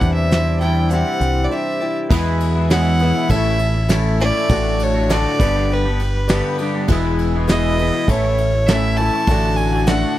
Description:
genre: folk rock and heartland rock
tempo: 100 BPM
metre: 4/4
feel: straight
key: unclear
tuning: A4 = 439 Hz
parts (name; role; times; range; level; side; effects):
- clear fiddle; melody; 0.0-10.2 s; B4 to A5; -22 LUFS; right 2 dB; none
- bright concert grand piano; accompaniment; 0.0-10.2 s; D4 to D5; -30 LUFS; right 5 dB; none
- picked twelve-string acoustic guitar; accompaniment; 0.0-10.2 s; A2 to D5; -24 LUFS; left 6 dB; none
- twangy electric guitar; riff; 0.0-10.2 s; E2 to G4; -23 LUFS; equal; analog chorus
- deep dub picked electric bass; bass; 0.0-10.0 s; E1 to E2; -19 LUFS; equal; none
- soft brush drum kit; drums; 0.0-10.0 s; crash cymbal, hi-hat, kick drum, ride cymbal, snare drum; -22 LUFS; equal; none
room: little or no reverb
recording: dry, close 1970s-style studio recording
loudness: -15 LUFS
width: side -14 dB against mid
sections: 0.0-2.1 A section; 2.1-10.2 B section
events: break 1.5-2.1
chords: 0.0 Cadd9; 2.1 E; 3.3 A; 4.5 D/A; 5.4 G; 6.9 E; 8.1 A; 9.3 D/A

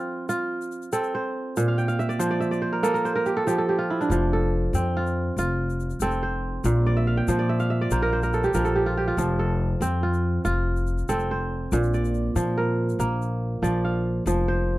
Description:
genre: west african traditional, West African string and xylophone music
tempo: 94 BPM (dotted quarters)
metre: 12/8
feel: straight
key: F major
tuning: A4 = 440 Hz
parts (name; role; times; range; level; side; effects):
- kora; arpeggios; 0.0-14.8 s; Bb2 to G5; -24 LUFS; right 2 dB; none
- egg shaker; percussion; 0.3-14.4 s; none; -40 LUFS; left 23 dB; none
- upright bass; bass; 4.1-14.8 s; F1 to Bb2; -25 LUFS; left 1 dB; none
room: little or no reverb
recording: dry, close 1970s-style studio recording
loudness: -22 LUFS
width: side -17 dB against mid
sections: 0.0-14.3 A section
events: kora fill 1.7-4.1, 6.9-9.2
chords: 0.0 F; 1.6 Bb5; 4.1 F; 6.6 Bb5; 9.2 F; 11.7 Bb; 14.3 F5

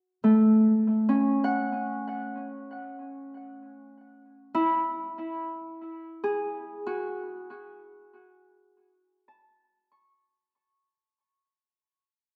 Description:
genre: ambient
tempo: 71 BPM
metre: 3/4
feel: straight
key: A major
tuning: A4 = 437 Hz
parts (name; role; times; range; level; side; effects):
- Celtic harp; solo; 0.2-11.2 s; A3 to C#6; -28 LUFS; equal; tape echo
room: wet echo chamber reverb, RT60 2.2 s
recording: echo-heavy mix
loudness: -26 LUFS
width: mono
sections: 0.0-10.4 A section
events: fade-out 3.7-10.4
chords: 0.3 A6

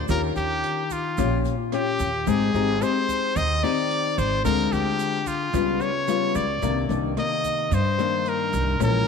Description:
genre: bossa nova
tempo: 110 BPM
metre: 4/4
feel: straight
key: unclear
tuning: A4 = 440 Hz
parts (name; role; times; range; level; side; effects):
- nylon-string guitar; accompaniment; 0.0-9.1 s; G2 to G4; -24 LUFS; left 7 dB; none
- upright bass; bass; 0.0-9.1 s; Ab1 to G2; -27 LUFS; right 2 dB; none
- brilliant trumpet; melody; 0.1-9.1 s; F4 to Eb5; -25 LUFS; equal; slapback echo
- open jazz drum kit; drums; 0.1-8.9 s; hi-hat, kick drum, rim click; -36 LUFS; right 8 dB; none
- egg shaker; percussion; 0.1-9.1 s; none; -45 LUFS; right 18 dB; none
room: moderate echo chamber reverb, RT60 2.3 s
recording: 1960s-style stereo with parts hard left and right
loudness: -21 LUFS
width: side -5 dB against mid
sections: 0.0-9.1 A section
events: none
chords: 0.1 Eb9; 2.3 Abmaj7; 4.4 Dm7b5; 5.5 Db7#11; 6.6 Cm9

